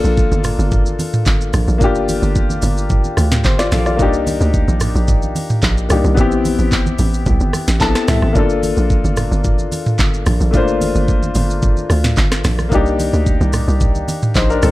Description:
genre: amapiano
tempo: 110 BPM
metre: 4/4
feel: straight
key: G minor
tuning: A4 = 439 Hz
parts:
  - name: clear baby grand piano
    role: accompaniment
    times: 0.0-14.7 s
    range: A3 to A5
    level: -19 LUFS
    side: left 3 dB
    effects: none
  - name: hollow log drum bass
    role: bass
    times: 0.0-14.7 s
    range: G1 to D2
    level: -17 LUFS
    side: equal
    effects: none
  - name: smooth R&B drum kit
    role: drums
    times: 0.0-14.7 s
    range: handclaps, hi-hat, kick drum, rim click, shaker, snare drum, toms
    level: -18 LUFS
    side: equal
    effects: none
  - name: congas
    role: percussion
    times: 0.3-14.7 s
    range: none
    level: -24 LUFS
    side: right 2 dB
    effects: none
room: little or no reverb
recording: dark, warm production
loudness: -13 LUFS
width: side -17 dB against mid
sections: 0.0-14.7 A section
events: grand piano fill 7.5-8.4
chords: 0.0 Gm9; 4.0 Cm9; 6.2 Am9; 8.4 Gm9; 12.7 Cm9

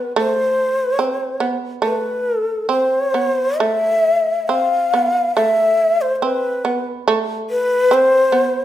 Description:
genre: japanese traditional, Japanese chamber music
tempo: 69 BPM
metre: 2/4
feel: uneven beats, rubato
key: A hirajoshi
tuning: A4 = 440 Hz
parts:
  - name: breathy mellow shakuhachi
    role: melody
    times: 0.0-8.6 s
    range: B4 to F5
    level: -16 LUFS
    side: left 1 dB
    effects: none
  - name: shamisen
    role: second line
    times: 0.0-8.6 s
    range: A3 to C4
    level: -21 LUFS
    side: right 4 dB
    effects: none
room: moderate recital hall reverb, RT60 1.3 s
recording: minimal, uncompressed stereo recording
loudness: -15 LUFS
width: side -12 dB against mid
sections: 0.0-8.6 A section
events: none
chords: none

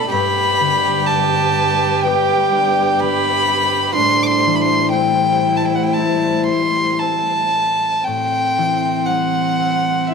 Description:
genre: celtic folk, Celtic slow air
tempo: 56-63 BPM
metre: 4/4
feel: rubato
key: A dorian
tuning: A4 = 440 Hz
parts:
  - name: warm violin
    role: melody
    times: 0.0-10.1 s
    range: E5 to D6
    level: -17 LUFS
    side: left 1 dB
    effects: slapback echo
  - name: warm cello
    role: second line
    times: 0.0-10.1 s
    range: C4 to G4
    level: -21 LUFS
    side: right 12 dB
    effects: none
  - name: concert harp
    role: accompaniment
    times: 0.0-10.1 s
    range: G2 to G4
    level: -22 LUFS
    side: left 11 dB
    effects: none
  - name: dark studio string section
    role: sustained chords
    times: 0.0-8.0 s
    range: G2 to C5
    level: -25 LUFS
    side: left 2 dB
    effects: none
room: moderate echo chamber reverb, RT60 1.8 s, studio reverb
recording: 1960s-style stereo with parts hard left and right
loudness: -14 LUFS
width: side -5 dB against mid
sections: 0.0-8.1 A section; 8.1-10.1 B section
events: none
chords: 0.1 G; 4.0 Am7

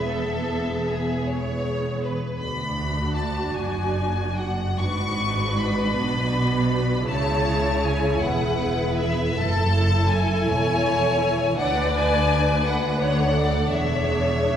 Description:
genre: classical, slow romantic movement for string orchestra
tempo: 47-58 BPM (dotted quarters)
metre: 12/8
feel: rubato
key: unclear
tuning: A4 = 445 Hz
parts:
  - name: rich studio violin section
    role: melody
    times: 0.0-14.6 s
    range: E5 to C#6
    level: -27 LUFS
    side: left 3 dB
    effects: none
  - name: clear studio violin section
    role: second line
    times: 0.0-14.6 s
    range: G#4 to D5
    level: -28 LUFS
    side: left 1 dB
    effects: none
  - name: warm studio viola section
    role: accompaniment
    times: 0.0-14.6 s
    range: B3 to B4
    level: -27 LUFS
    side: right 1 dB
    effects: none
  - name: clear studio cello section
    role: bass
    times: 0.0-14.6 s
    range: D2 to C#3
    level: -27 LUFS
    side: right 1 dB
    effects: none
  - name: warm studio double bass section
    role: bass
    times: 0.0-14.6 s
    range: E1 to D2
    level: -27 LUFS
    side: right 1 dB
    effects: none
room: wet scoring stage reverb, RT60 2.1 s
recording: heard from further back in the room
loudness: -20 LUFS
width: side -9 dB against mid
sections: 0.0-14.6 A section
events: none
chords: 0.0 E; 2.4 D; 4.8 G#m7b5; 7.1 C#m; 9.4 F#m7; 11.6 Bm/D; 13.7 E7

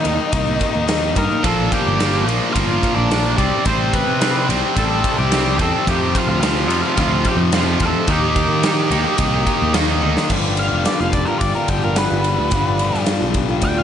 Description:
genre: quiet-loud alternative rock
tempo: 108 BPM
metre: 4/4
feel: straight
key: unclear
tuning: A4 = 438 Hz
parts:
  - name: octave-fuzz lead guitar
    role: melody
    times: 0.0-13.8 s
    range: D4 to D6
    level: -22 LUFS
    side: right 1 dB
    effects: distortion
  - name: picked steel-string acoustic guitar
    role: arpeggios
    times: 0.0-1.4, 10.3-13.8 s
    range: G2 to F4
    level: -26 LUFS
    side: right 4 dB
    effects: none
  - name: heavy high-gain guitar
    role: riff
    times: 0.0-13.8 s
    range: F2 to Eb4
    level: -22 LUFS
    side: left 9 dB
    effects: distortion
  - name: picked electric bass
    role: bass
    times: 0.0-13.8 s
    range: F1 to Eb3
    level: -22 LUFS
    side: equal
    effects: none
  - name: big rock drum kit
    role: drums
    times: 0.0-13.8 s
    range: crash cymbal, kick drum, ride cymbal, snare drum, toms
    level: -21 LUFS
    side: equal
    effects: none
  - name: high-gain distorted guitar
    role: riff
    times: 1.4-10.3 s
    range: F2 to Eb4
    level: -22 LUFS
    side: right 11 dB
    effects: distortion
room: light reverb, small room ambience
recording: nothing above 10.4 kHz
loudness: -15 LUFS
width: side -9 dB against mid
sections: 0.0-10.3 A section; 10.3-13.8 B section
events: drum fill 10.0; lead electric guitar solo 10.3-13.8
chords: 0.0 Eb; 1.4 Bb; 3.4 C5; 5.9 F5; 8.1 Eb; 10.3 G7

